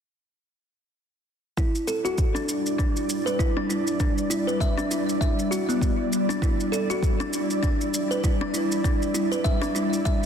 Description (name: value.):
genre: organic downtempo.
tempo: 99 BPM.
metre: 4/4.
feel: swing 57% on 16ths.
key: E minor.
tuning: A4 = 440 Hz.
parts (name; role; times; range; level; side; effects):
ethereal airy pad; sustained chords; 2.4-10.3 s; G3 to D5; -28 LUFS; right 1 dB; ensemble chorus, built-in reverb, sidechain pumping.
kalimba; arpeggios; 1.6-10.2 s; B3 to E5; -26 LUFS; left 1 dB; low-pass filter, tape echo.
electronic kick drum; drums; 1.6-10.2 s; none; -24 LUFS; equal; none.
shaker; drums; 1.6-10.3 s; none; -34 LUFS; right 1 dB; none.
room: moderate lush hall reverb, RT60 2.3 s.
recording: dense, heavily limited modern master.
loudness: -22 LUFS.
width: side -8 dB against mid.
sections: 1.6-10.3 A section.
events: none.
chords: 1.6 Em7.